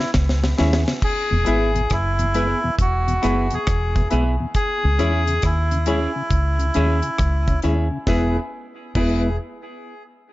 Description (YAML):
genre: roots reggae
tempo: 68 BPM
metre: 4/4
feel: swing 64% on 16ths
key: E major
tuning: A4 = 443 Hz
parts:
  - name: melodica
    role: melody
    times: 0.0-9.4 s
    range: E4 to G#4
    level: -25 LUFS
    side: equal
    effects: tape echo
  - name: mellow tonewheel organ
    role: accompaniment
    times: 0.0-9.3 s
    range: E2 to E4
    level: -28 LUFS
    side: left 2 dB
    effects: overdrive, chorus vibrato, slow rotary speaker
  - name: deep reggae drum kit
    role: drums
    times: 0.0-9.2 s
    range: crash cymbal, hi-hat, kick drum, rim click, snare drum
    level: -23 LUFS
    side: equal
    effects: none
  - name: deep dub fingered electric bass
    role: bass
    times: 0.2-9.4 s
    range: E1 to D#2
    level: -20 LUFS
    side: equal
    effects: none
  - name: semi-hollow electric guitar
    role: accompaniment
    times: 0.4-9.3 s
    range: B3 to G#4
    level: -28 LUFS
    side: right 2 dB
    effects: tape echo
  - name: bright upright piano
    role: stabs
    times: 0.6-9.3 s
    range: E4 to E5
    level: -30 LUFS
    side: left 5 dB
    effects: none
room: light reverb, small room ambience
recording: nothing above 7.6 kHz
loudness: -18 LUFS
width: side -17 dB against mid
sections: 0.0-1.0 A section; 1.0-8.1 B section; 8.1-10.3 C section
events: drum fill 0.0-1.0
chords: 0.0 C#m; 1.0 E; 4.5 C#m; 8.1 E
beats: 0.14 | 1.02 1.90 2.78 3.66 | 4.55 5.43 6.31 7.19 | 8.07 8.95